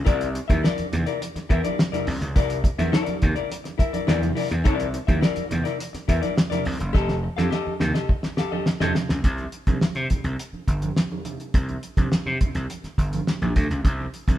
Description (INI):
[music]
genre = funk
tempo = 104 BPM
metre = 4/4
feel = straight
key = C mixolydian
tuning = A4 = 440 Hz
[part]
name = vintage hollow-body jazz guitar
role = accompaniment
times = 0.0-9.1 s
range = E4 to F5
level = -27 LUFS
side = left 6 dB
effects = none
[part]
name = gritty slap bass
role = bass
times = 0.0-14.4 s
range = F1 to C3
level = -26 LUFS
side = equal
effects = overdrive
[part]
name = cloth-damped thuddy drum kit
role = drums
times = 0.1-14.4 s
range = hi-hat, kick drum, snare drum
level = -23 LUFS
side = equal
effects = none
[part]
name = congas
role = percussion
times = 0.1-14.4 s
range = none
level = -32 LUFS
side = right 4 dB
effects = none
[sound]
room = moderate stone room reverb, RT60 1.2 s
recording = band playing live in one room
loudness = -21 LUFS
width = side -12 dB against mid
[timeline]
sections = 0.0-9.2 A section; 9.2-14.4 B section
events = drum fill 6.9-9.2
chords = 0.1 C9; 6.9 F9; 9.2 C5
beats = | 0.06 0.64 1.21 1.78 | 2.36 2.93 3.51 4.08 | 4.65 5.23 5.80 6.37 | 6.95 7.52 8.09 8.67 | 9.24 9.82 10.39 10.97 | 11.54 12.12 12.69 13.27 | 13.84